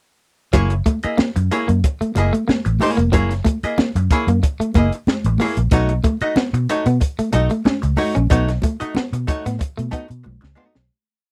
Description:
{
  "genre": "funk",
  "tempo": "93 BPM",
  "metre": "4/4",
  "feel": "straight",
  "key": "unclear",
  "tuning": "A4 = 441 Hz",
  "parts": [
    { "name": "archtop guitar, miked and amplified", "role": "accompaniment", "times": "0.5-10.8 s", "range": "A3 to D#5", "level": "-24 LUFS", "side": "equal", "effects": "wah" },
    { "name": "electric guitar at the edge of break-up", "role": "riff", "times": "0.5-10.7 s", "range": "F#3 to C#4", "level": "-25 LUFS", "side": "equal", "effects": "none" },
    { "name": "vintage muted fingered electric bass", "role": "bass", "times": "0.5-10.9 s", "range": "E#1 to B2", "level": "-21 LUFS", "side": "equal", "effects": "none" },
    { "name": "compact cocktail drum kit", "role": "drums", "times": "0.5-10.9 s", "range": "hi-hat, kick drum, snare drum", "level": "-22 LUFS", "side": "equal", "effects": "none" },
    { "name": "congas", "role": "percussion", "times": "0.5-10.7 s", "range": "none", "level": "-29 LUFS", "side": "equal", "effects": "none" }
  ],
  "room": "little or no reverb",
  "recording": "dry, close 1970s-style studio recording",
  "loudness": "-19 LUFS",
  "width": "mono",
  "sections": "0.5-10.9 groove",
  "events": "fade-out 8.3-10.9; drum fill 10.3-10.9",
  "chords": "0.5 F#9; 5.7 B9"
}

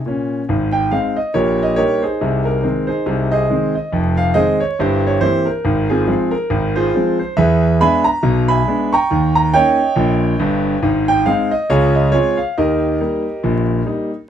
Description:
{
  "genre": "jazz, stride piano",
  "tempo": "139 BPM",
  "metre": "4/4",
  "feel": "swing 59% on 8ths",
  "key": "Ab major",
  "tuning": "A4 = 440 Hz",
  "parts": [
    { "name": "clear concert grand piano", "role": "solo", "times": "0.0-14.1 s", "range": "F1 to Db6", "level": "-14 LUFS", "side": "right 1 dB", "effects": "none" }
  ],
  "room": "light reverb",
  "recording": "close, detailed microphones, vinyl crackle",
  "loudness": "-14 LUFS",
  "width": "side -9 dB against mid",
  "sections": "0.5-14.3 A section",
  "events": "none",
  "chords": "0.5 Ab; 1.3 Eb/Bb; 2.2 Ab/C; 3.9 Fm7; 4.8 C7/G; 5.7 Fm/Ab; 7.4 E7; 9.1 Eb7; 10.8 Ab; 11.7 Dbmaj7; 12.6 Eb"
}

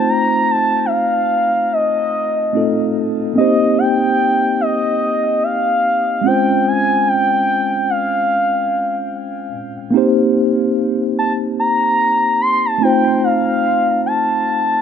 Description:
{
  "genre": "R&B",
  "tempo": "73 BPM",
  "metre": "4/4",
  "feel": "swing 58% on 16ths",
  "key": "C dorian",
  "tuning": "A4 = 440 Hz",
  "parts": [
    { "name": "gliding portamento lead", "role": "melody", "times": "0.0-14.8 s", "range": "Eb5 to C6", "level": "-16 LUFS", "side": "equal", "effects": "chorus, ping-pong delay" },
    { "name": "mellow tine electric piano", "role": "accompaniment", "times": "0.0-14.8 s", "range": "Ab3 to C5", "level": "-18 LUFS", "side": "equal", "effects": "medium stereo tremolo" }
  ],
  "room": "light reverb, digital ambience",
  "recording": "none",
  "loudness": "-14 LUFS",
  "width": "side -8 dB against mid",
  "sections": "0.0-14.8 A section",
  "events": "none",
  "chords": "0.0 F7; 3.4 Cm7; 6.2 Dbmaj7; 9.9 Cm7; 12.8 F7"
}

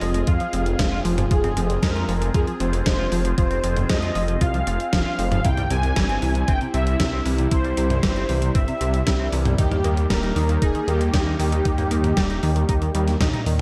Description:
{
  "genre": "synthwave",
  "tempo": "116 BPM",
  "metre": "4/4",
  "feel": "straight",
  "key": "F minor",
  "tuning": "A4 = 439 Hz",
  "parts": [
    { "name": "soft supersaw", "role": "melody", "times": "0.0-13.2 s", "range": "G4 to Ab5", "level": "-30 LUFS", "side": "equal", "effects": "digital delay" },
    { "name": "phased analog pad", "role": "sustained chords", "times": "0.0-13.6 s", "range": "G3 to Ab4", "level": "-32 LUFS", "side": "equal", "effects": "phaser, chorus, sidechain pumping" },
    { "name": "analog pluck", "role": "arpeggios", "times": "0.0-13.6 s", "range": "Eb3 to F4", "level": "-33 LUFS", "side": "equal", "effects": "chorus, vintage 12-bit sampler grit, tape echo" },
    { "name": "semi-hollow electric guitar", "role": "riff", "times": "0.0-13.5 s", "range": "C3 to F4", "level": "-34 LUFS", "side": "equal", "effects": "subtle chorus, vintage 12-bit sampler grit, tape echo" },
    { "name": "detuned saw bass", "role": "bass", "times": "0.0-13.6 s", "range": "Eb1 to F2", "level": "-25 LUFS", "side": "equal", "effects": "chorus, tube saturation, sidechain pumping" },
    { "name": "gated 80s digital drum machine", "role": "drums", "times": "0.0-13.6 s", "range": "hi-hat, snare drum, toms", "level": "-30 LUFS", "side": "equal", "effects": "gated reverb, gated reverb snare" },
    { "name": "electronic kick drum", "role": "drums", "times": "0.3-13.3 s", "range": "none", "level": "-25 LUFS", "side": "equal", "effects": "none" }
  ],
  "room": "light reverb, digital ambience",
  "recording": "dark, warm production",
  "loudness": "-21 LUFS",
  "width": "mono",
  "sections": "0.0-13.6 A section",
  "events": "drum fill 13.2-13.6",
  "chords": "0.0 Fm; 5.4 C; 9.6 Eb"
}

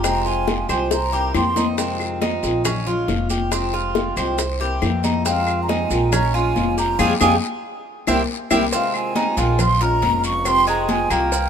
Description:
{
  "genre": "latin, Cuban son and guajira",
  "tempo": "138 BPM",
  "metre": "4/4",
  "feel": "straight",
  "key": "F minor",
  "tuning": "A4 = 440 Hz",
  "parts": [
    { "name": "breathy concert flute", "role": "melody", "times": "0.0-1.7, 5.3-11.5 s", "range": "F5 to Db6", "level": "-22 LUFS", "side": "right 2 dB", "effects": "none" },
    { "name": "picked old ladder-braced acoustic guitar", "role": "accompaniment", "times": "0.0-11.4 s", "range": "C3 to G4", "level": "-25 LUFS", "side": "left 1 dB", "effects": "none" },
    { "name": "Cuban tres", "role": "arpeggios", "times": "0.0-11.5 s", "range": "Ab3 to C5", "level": "-24 LUFS", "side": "right 2 dB", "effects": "none" },
    { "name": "upright bass", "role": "bass", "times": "0.0-11.5 s", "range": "F1 to F2", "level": "-24 LUFS", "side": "equal", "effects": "none" },
    { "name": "bongos and cowbell", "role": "percussion", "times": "0.0-11.5 s", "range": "none", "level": "-26 LUFS", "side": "left 6 dB", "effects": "none" },
    { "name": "claves", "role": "percussion", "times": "0.0-11.3 s", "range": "none", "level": "-30 LUFS", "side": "left 4 dB", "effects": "none" },
    { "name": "congas", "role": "percussion", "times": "0.0-11.5 s", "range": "none", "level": "-27 LUFS", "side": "left 4 dB", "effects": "none" },
    { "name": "guiro", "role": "percussion", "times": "0.0-11.5 s", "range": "none", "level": "-34 LUFS", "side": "left 7 dB", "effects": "none" },
    { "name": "maracas", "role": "percussion", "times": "0.0-11.5 s", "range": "none", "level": "-30 LUFS", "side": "right 7 dB", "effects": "none" }
  ],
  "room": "light reverb",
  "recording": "minimal, uncompressed stereo recording",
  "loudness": "-17 LUFS",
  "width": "side -8 dB against mid",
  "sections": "0.0-8.7 A section; 8.7-11.5 B section",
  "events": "drum fill 0.9-1.8, 7.9-8.7; band accent 7.0-8.7",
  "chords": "0.0 Fmadd9; 0.9 C7; 1.8 Fm7; 2.6 Bbm7; 3.5 Fmadd9; 4.4 C7; 5.3 Fm7; 6.1 Bbm7; 7.0 Fmadd9; 7.9 C7; 8.7 Fm7; 9.6 Bbm7; 10.5 Fmadd9"
}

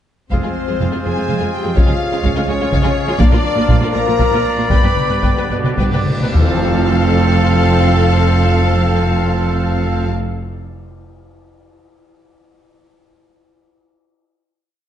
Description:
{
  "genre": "cinematic, epic orchestral film score",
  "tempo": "70-84 BPM (dotted quarters)",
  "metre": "6/8",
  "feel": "straight",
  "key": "unclear",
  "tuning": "A4 = 441 Hz",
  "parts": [
    { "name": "clear symphonic violin section", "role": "melody", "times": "0.3-10.1 s", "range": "C5 to B5", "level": "-25 LUFS", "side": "left 5 dB", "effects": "none" },
    { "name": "warm symphonic violin section", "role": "second line", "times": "0.3-10.1 s", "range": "F4 to A5", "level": "-26 LUFS", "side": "left 3 dB", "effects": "none" },
    { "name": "rich studio viola section", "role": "accompaniment", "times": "0.3-10.1 s", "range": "Ab3 to B4", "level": "-25 LUFS", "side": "equal", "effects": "none" },
    { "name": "chamber organ, soft reed", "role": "sustained chords", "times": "0.3-10.1 s", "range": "C4 to F5", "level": "-27 LUFS", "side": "right 1 dB", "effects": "none" },
    { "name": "clear French horn section", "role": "sustained chords", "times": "0.3-10.1 s", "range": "C4 to B4", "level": "-23 LUFS", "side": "left 3 dB", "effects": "none" },
    { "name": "warm trombone section", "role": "sustained chords", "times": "0.3-10.1 s", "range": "F3 to C4", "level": "-26 LUFS", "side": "right 3 dB", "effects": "none" },
    { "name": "bright trumpet", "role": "stabs", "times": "0.3-10.1 s", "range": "A4 to D5", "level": "-24 LUFS", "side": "right 2 dB", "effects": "none" },
    { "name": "rich symphonic cello section", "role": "bass", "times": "0.3-10.1 s", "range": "F2 to Db3", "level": "-20 LUFS", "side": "right 2 dB", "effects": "none" },
    { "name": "rich symphonic double bass section", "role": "bass", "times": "0.3-10.1 s", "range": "F1 to Db2", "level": "-19 LUFS", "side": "right 2 dB", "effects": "none" },
    { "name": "taiko ensemble", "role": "drums", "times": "0.3-6.5 s", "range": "none", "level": "-17 LUFS", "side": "left 1 dB", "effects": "none" },
    { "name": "cymbal swell and tam-tam", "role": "percussion", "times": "3.2-8.6 s", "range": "none", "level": "-28 LUFS", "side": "left 3 dB", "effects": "none" }
  ],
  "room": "wet scoring stage reverb, RT60 1.6 s",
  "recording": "dark, warm production, nothing above 10.7 kHz",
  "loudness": "-13 LUFS",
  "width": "side -10 dB against mid",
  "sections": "0.3-6.3 theme; 6.3-9.8 final chord",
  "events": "slowing down 2.5-6.3; band accent 6.3-6.9",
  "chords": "0.3 Fm; 1.8 Db; 3.2 Bb; 4.7 G; 6.3 F"
}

